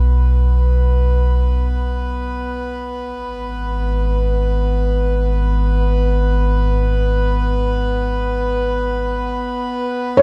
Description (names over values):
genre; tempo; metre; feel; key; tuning
ambient; free time; none; none; unclear; A4 = 439 Hz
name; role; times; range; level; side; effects
deep rumbling drone; bass; 0.0-10.2 s; G#1 to E2; -19 LUFS; equal; built-in reverb
pedal harmonium; drone; 0.0-10.2 s; B3 to B4; -24 LUFS; equal; none
felt-muted upright piano; arpeggios; 10.2 s; C#5; -8 LUFS; equal; none
room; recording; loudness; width
light reverb; none; -18 LUFS; mono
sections
0.0-10.2 A section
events
fade-in on harmonium 0.0-10.2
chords
0.0 N.C.; 2.5 G#m